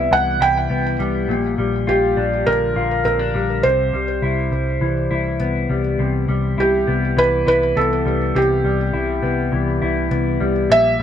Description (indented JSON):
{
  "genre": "dream pop",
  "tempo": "102 BPM",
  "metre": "4/4",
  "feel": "straight",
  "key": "unclear",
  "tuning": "A4 = 441 Hz",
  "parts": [
    { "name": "felt-muted upright piano", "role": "melody", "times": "0.0-11.0 s", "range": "G4 to G5", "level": "-19 LUFS", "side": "right 2 dB", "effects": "ping-pong delay" },
    { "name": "mellow electric guitar", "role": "arpeggios", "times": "0.0-11.0 s", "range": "Bb2 to F4", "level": "-21 LUFS", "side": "left 4 dB", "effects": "analog chorus, ping-pong delay" },
    { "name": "vintage muted picked electric bass", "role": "bass", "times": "0.0-11.0 s", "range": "Bb1 to C2", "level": "-23 LUFS", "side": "equal", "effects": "none" }
  ],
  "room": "moderate booth ambience, RT60 0.2 s",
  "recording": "none",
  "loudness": "-16 LUFS",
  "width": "side -9 dB against mid",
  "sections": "0.0-6.0 A section; 6.0-11.0 A section",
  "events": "none",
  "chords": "0.0 Cmaj7; 1.3 Bb6; 3.6 Cmaj7",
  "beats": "0.11 0.70 | 1.29 1.88 2.46 3.05 | 3.64 4.23 4.82 5.40 | 5.99 6.58 7.17 7.76 | 8.35 8.93 9.52 10.11 | 10.70"
}